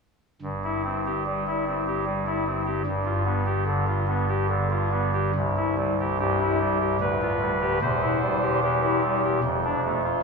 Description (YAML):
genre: classical, chorale-style piece for pipe organ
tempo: 74 BPM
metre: 3/4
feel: rubato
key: C major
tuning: A4 = 435 Hz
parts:
  - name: pipe organ, soft reed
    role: solo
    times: 0.4-10.2 s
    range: C1 to C5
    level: -22 LUFS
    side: equal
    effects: none
room: wet church reverb, RT60 2.8 s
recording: heard from further back in the room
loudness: -22 LUFS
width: side -4 dB against mid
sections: 0.4-5.3 A section; 5.3-10.2 B section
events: none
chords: 0.4 C/G; 2.9 G7; 5.3 C; 7.0 G7/D; 7.8 C/E; 9.4 Dm/F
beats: | 0.41 1.25 2.06 | 2.85 3.66 4.48 | 5.34 6.18 7.00 | 7.81 8.62 9.43